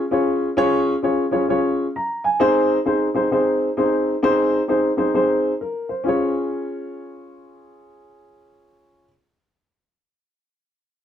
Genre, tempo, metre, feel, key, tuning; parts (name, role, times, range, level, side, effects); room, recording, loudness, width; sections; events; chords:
soul; 131 BPM; 4/4; swing 63% on 8ths; Db major; A4 = 441 Hz
dark upright piano; solo; 0.0-9.1 s; C4 to Bb5; -18 LUFS; equal
moderate studio reverb, RT60 0.5 s; -18 LUFS; side -9 dB against mid
0.0-6.1 A section; 6.1-9.7 B section
0.0 Db; 2.4 Ab; 6.1 Db